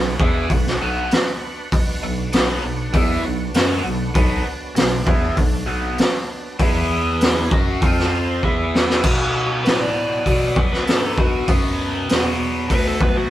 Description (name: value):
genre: blues rock power trio and southern rock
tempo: 98 BPM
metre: 4/4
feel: straight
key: B minor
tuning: A4 = 440 Hz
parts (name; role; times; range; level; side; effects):
- overdriven tonewheel organ; sustained chords; 0.0-9.0 s; F#3 to C5; -31 LUFS; right 2 dB; slow rotary speaker, chorus vibrato
- biting overdriven guitar; riff; 0.0-13.3 s; B2 to F#4; -23 LUFS; equal; phaser
- dark bass clarinet; bass; 0.0-13.3 s; B1 to B2; -24 LUFS; equal; none
- raw garage drum kit; drums; 0.2-13.1 s; crash cymbal, hi-hat, kick drum, snare drum; -19 LUFS; equal; none
- overdriven slide guitar; melody; 9.6-13.3 s; F#4 to D5; -24 LUFS; equal; none
room: light reverb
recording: band playing live in one room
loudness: -17 LUFS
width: side -13 dB against mid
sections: 0.0-9.0 A section; 9.0-13.3 B section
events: drum fill 8.4-9.0; electric slide guitar solo 9.0-13.3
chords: 0.0 Bm; 6.6 E5; 7.5 F#5; 7.8 F5; 8.4 E5; 9.0 Bm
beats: 0.50 1.11 | 1.72 2.33 2.94 3.54 | 4.15 4.76 5.37 5.98 | 6.59 7.20 7.81 8.42 | 9.03 9.65 10.26 10.87 | 11.48 12.09 12.70